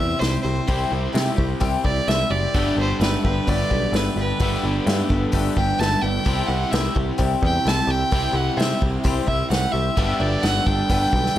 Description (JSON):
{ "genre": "folk rock and heartland rock", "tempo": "129 BPM", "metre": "4/4", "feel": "straight", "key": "unclear", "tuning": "A4 = 440 Hz", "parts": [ { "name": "clear fiddle", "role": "melody", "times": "0.0-11.4 s", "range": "B4 to A5", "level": "-25 LUFS", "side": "right 1 dB", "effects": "digital delay" }, { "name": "picked twelve-string acoustic guitar", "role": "accompaniment", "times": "0.0-11.4 s", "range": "G2 to A4", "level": "-28 LUFS", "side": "left 5 dB", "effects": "none" }, { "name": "overdriven electric guitar", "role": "riff", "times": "0.0-11.4 s", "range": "G2 to G4", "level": "-26 LUFS", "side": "right 1 dB", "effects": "none" }, { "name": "picked electric bass", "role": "bass", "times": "0.0-11.4 s", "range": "F#1 to C3", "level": "-24 LUFS", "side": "equal", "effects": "none" }, { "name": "unplugged drum kit", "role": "drums", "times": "0.2-11.4 s", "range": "hi-hat, kick drum, snare drum", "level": "-24 LUFS", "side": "equal", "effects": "none" } ], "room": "light reverb, small room ambience", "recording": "none", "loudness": "-18 LUFS", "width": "side -12 dB against mid", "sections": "0.0-11.4 A section", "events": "none", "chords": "0.0 C; 2.5 Gadd9; 6.3 C; 10.0 Gadd9" }